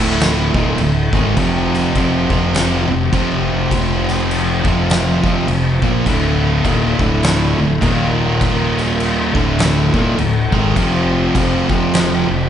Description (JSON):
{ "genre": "stoner and doom metal", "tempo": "102 BPM", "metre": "4/4", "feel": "swing 59% on 8ths", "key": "unclear", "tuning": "A4 = 440 Hz", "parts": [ { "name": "percussive tonewheel organ", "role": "sustained chords", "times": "0.0-12.5 s", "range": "D3 to G4", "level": "-28 LUFS", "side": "left 1 dB", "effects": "none" }, { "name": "distorted electric guitar", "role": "riff", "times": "0.0-12.5 s", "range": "D2 to Bb3", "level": "-21 LUFS", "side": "left 1 dB", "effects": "overdrive" }, { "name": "thick fuzz guitar", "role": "riff", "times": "0.0-12.5 s", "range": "D2 to Bb3", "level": "-21 LUFS", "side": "left 7 dB", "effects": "distortion" }, { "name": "thick fuzz guitar", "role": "riff", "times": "0.0-12.5 s", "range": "D2 to Bb3", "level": "-19 LUFS", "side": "right 7 dB", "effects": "distortion" }, { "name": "fingered electric bass", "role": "bass", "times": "0.0-12.5 s", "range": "D1 to Bb1", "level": "-22 LUFS", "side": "equal", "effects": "overdrive" }, { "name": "oversized low-tuned drum kit", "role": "drums", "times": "0.2-12.1 s", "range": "crash cymbal, kick drum, snare drum", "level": "-19 LUFS", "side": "equal", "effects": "none" } ], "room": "moderate large studio reverb, RT60 0.8 s", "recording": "band playing live in one room, nothing above 10.8 kHz", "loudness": "-13 LUFS", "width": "side -9 dB against mid", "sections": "0.0-12.5 A section", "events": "none", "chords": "0.0 D5; 1.4 F5; 6.1 D5; 7.8 Eb5; 9.3 D5; 10.8 F5" }